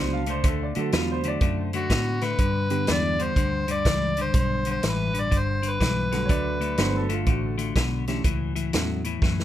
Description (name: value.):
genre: electric blues shuffle.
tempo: 123 BPM.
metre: 4/4.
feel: swing 64% on 8ths.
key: unclear.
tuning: A4 = 441 Hz.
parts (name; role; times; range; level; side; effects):
bright upright piano; second line; 0.0-1.6, 6.3-8.7 s; F4 to F5; -33 LUFS; right 7 dB; digital delay.
reed electric piano; accompaniment; 0.0-9.0 s; D3 to A4; -31 LUFS; right 5 dB; none.
clean electric guitar; riff; 0.0-9.4 s; G2 to B3; -28 LUFS; left 7 dB; none.
vintage muted fingered electric bass; bass; 0.0-9.4 s; G1 to A2; -28 LUFS; right 1 dB; none.
vintage drum kit; drums; 0.3-9.4 s; hi-hat, kick drum, snare drum; -26 LUFS; right 1 dB; none.
overdriven harmonica; melody; 1.8-7.1 s; F#4 to D5; -27 LUFS; equal; none.
room: light reverb.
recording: none.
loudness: -22 LUFS.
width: side -12 dB against mid.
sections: 0.0-9.4 A section.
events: drum fill 9.2.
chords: 0.0 D; 2.4 G; 8.2 A.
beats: | 0.45 0.93 1.42 1.91 | 2.39 2.88 3.37 3.86 | 4.34 4.83 5.32 5.81 | 6.29 6.78 7.27 7.76 | 8.25 8.73 9.22.